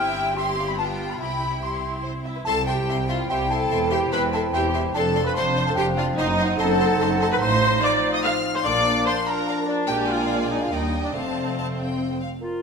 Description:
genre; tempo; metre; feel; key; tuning
cinematic, playful, whimsical film cue; 145 BPM; 3/4; straight; C major; A4 = 440 Hz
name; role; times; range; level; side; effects
music box; melody; 0.0-12.2 s; C5 to F6; -30 LUFS; equal; none
rich chamber violin section; melody; 0.0-12.2 s; C5 to F6; -31 LUFS; left 4 dB; none
bright large flute ensemble; second line; 0.0-12.2 s; F5 to C6; -31 LUFS; equal; none
rich chamber violin section; second line; 0.0-12.3 s; G4 to C6; -33 LUFS; left 3 dB; none
rich chamber viola section; accompaniment; 0.0-12.2 s; B3 to F5; -25 LUFS; equal; none
rich chamber cello section; bass; 0.0-12.2 s; C2 to G4; -30 LUFS; right 2 dB; none
rich chamber double bass section; bass; 0.0-12.2 s; E1 to Eb2; -30 LUFS; right 2 dB; none
clear clarinet; second line; 2.5-12.6 s; C4 to F4; -31 LUFS; equal; none
dark bassoon; accompaniment; 2.5-12.6 s; A3 to C4; -33 LUFS; equal; none
dark French horn section; sustained chords; 2.9-12.2 s; F3 to E4; -32 LUFS; left 3 dB; none
room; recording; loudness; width
wet recital hall reverb, RT60 1.3 s; minimal, uncompressed stereo recording; -20 LUFS; side -5 dB against mid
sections
0.0-2.5 A section; 2.5-12.4 B section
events
none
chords
0.0 C/G; 0.8 G7; 1.2 C; 3.7 C/E; 5.0 Dm7/F; 6.2 F#dim7; 7.4 F7/A; 8.7 Bb; 9.9 Bb7; 10.7 Ebmaj7; 11.1 F

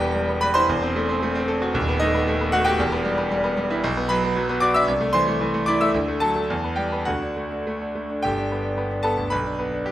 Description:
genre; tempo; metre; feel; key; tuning
classical, virtuoso piano study; 102-116 BPM; 2/4; rubato; E minor, G major from 3.8 s; A4 = 440 Hz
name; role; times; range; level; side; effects
bright concert grand piano; solo; 0.0-9.9 s; D#1 to E6; -20 LUFS; equal; none
room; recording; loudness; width
moderate recital hall reverb, RT60 1.3 s; close, detailed microphones; -20 LUFS; side -13 dB against mid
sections
0.0-8.2 A section; 8.2-9.9 B section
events
none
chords
0.0 Em; 0.7 F#m7b5/E (rootless); 1.7 B7/D#; 2.8 Em; 3.8 Bm; 4.9 Am/C; 5.9 D; 6.5 Em; 7.1 D; 8.2 G; 9.3 G/B (rootless)

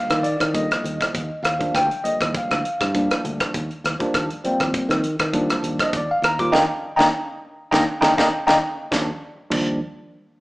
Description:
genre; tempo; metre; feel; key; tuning
electric jazz fusion; 100 BPM; 4/4; swing 53% on 16ths; Eb major; A4 = 441 Hz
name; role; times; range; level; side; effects
bright tine electric piano; accompaniment; 0.0-9.8 s; D3 to D6; -21 LUFS; equal; medium stereo tremolo, phaser
fretless electric bass; bass; 0.1-9.8 s; D2 to Eb3; -28 LUFS; equal; none
tight funk drum kit; drums; 0.1-9.7 s; crash cymbal, hi-hat, kick drum, rim click, snare drum; -23 LUFS; equal; none
room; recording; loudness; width
moderate large studio reverb, RT60 1.3 s; band playing live in one room, small speaker sound; -19 LUFS; side -20 dB against mid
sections
0.0-8.9 A section; 8.9-10.4 B section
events
band accent 6.5-8.9; tine electric piano fill 7.7-8.9; drum fill 8.3-8.9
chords
0.0 Ebmaj9

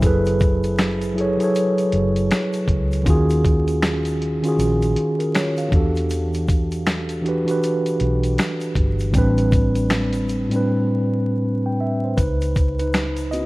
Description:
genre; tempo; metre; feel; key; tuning
lo-fi hip hop; 79 BPM; 4/4; swing 62% on 16ths; unclear; A4 = 440 Hz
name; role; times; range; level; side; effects
mellow tine electric piano; accompaniment; 0.0-13.5 s; A2 to G5; -20 LUFS; equal; medium stereo tremolo, cassette tape, low-pass filter
vintage muted fingered electric bass; bass; 0.0-13.5 s; F#1 to E2; -23 LUFS; equal; none
dusty soul sampler-style drum kit; drums; 0.0-13.5 s; finger snaps, hi-hat, kick drum, snare drum; -21 LUFS; equal; none
egg shaker; percussion; 0.0-13.5 s; none; -45 LUFS; left 4 dB; none
room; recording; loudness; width
light reverb, digital ambience; vinyl crackle; -17 LUFS; side -20 dB against mid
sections
0.0-12.2 A section; 12.2-13.5 B section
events
break 10.7-12.2; tine electric piano solo 12.2-13.5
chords
0.0 F#m11; 3.1 D#m11; 5.7 Em11; 9.1 Am11; 12.2 C#7sus2

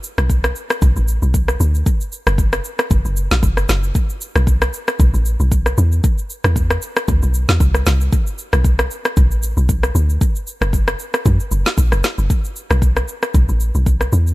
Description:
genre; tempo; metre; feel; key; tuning
amapiano; 115 BPM; 4/4; swing 55% on 16ths; unclear; A4 = 444 Hz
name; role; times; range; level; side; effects
deep house drum kit; drums; 0.0-14.3 s; kick drum, rim click, shaker, snare drum; -17 LUFS; equal; none
deep log drum bass; bass; 0.2-14.3 s; F#1 to F#2; -15 LUFS; equal; none
room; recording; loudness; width
little or no reverb; none; -14 LUFS; side -19 dB against mid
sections
0.0-12.3 A section; 12.3-14.3 B section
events
drop 0.0-12.3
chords
none

